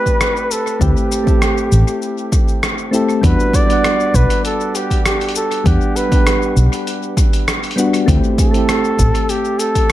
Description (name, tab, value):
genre	sunset chillout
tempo	99 BPM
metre	4/4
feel	straight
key	E minor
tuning	A4 = 440 Hz
part	mellow flugelhorn	melody	0.0-9.9 s	G4 to D5	-20 LUFS	equal	tape echo
part	soft electric-piano-like synth keys	accompaniment	0.0-9.9 s	G3 to F#5	-19 LUFS	moving between left 5 dB and right 4 dB	chorus, auto-pan, tape echo
part	dusty soul sampler-style drum kit	drums	0.1-9.9 s	cabasa, hi-hat, rim click	-22 LUFS	left 1 dB	tape echo
part	electronic kick drum	drums	0.1-9.9 s	none	-16 LUFS	equal	overdrive
part	fretless electric bass	bass	0.8-9.1 s	A1 to E2	-12 LUFS	equal	none
room	moderate spring reverb, RT60 2.0 s, digital ambience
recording	echo-heavy mix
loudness	-13 LUFS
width	side -14 dB against mid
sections	0.0-9.9 A section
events	none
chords	0.0 D7sus4 (rootless); 3.2 Em7 (rootless); 8.1 D7sus4 (rootless)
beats	0.20 | 0.81 1.42 2.02 2.63 | 3.23 3.84 4.45 5.05 | 5.66 6.26 6.87 7.48 | 8.08 8.69 9.29 9.90